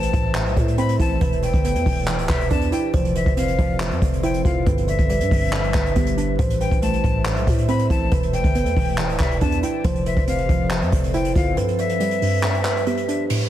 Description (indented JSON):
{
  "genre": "hip hop, trap",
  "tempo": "139 BPM",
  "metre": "4/4",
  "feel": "half-time",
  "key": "unclear",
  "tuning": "A4 = 439 Hz",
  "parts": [
    { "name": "kalimba", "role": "melody", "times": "0.0-13.3 s", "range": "G4 to E5", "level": "-26 LUFS", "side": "right 2 dB", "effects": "tape echo" },
    { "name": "breathy bright jazz flute", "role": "second line", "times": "0.0-13.3 s", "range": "E5 to B5", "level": "-28 LUFS", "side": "left 8 dB", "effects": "tape echo" },
    { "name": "warbly dusty pluck", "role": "accompaniment", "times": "0.0-13.5 s", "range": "G2 to F4", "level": "-26 LUFS", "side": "right 2 dB", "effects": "chorus" },
    { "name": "ethereal airy pad", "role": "sustained chords", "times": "0.0-13.3 s", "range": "E3 to E5", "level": "-31 LUFS", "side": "equal", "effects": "ensemble chorus, built-in reverb" },
    { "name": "growling 808-style bass", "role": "bass", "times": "0.0-11.6 s", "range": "D1 to A2", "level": "-24 LUFS", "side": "equal", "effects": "none" },
    { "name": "jazz brush drum kit", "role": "drums", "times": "0.0-13.5 s", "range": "crash cymbal, handclaps, hi-hat, kick drum", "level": "-22 LUFS", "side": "equal", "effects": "none" },
    { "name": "downlifter", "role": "sound effects", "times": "13.3-13.5 s", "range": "none", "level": "-32 LUFS", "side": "left 2 dB", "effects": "none" }
  ],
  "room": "light reverb, small room ambience",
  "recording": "dense, heavily limited modern master, vinyl crackle",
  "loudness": "-18 LUFS",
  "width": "side -12 dB against mid",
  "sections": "0.0-13.3 A section",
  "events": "kick muted 11.6-13.3, 13.3",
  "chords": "0.0 Am; 1.2 Em7; 2.9 Fmaj7; 4.7 G6; 6.4 Am; 8.1 Em7; 9.8 Fmaj7; 11.6 G6",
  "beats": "0.35 0.78 | 1.21 1.64 2.08 2.51 | 2.94 3.37 3.80 4.23 | 4.67 5.10 5.53 5.96 | 6.39 6.82 7.25 7.69 | 8.12 8.55 8.98 9.41 | 9.85 10.28 10.71 11.14 | 11.57 12.00 12.44 12.87 | 13.30"
}